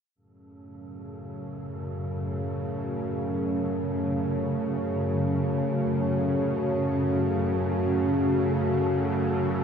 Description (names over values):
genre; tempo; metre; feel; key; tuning
dark ambient drone; free time; none; none; unclear; A4 = 440 Hz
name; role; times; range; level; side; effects
dark analog pad; sustained chords; 1.0-9.6 s; A3 to C#5; -30 LUFS; equal; chorus, phaser
bowed-like drone; drone; 0.8-9.6 s; F#2 to C#3; -26 LUFS; equal; built-in reverb
wind-like tuned noise texture; texture; 0.7-9.6 s; A4; -41 LUFS; right 1 dB; built-in reverb, shimmer reverb
room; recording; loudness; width
wet huge ambient reverb, RT60 7.5 s; dark, warm production; -24 LUFS; side -7 dB against mid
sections
0.2-9.6 A section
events
fade-in on synth texture 0.2-9.6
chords
0.2 F#m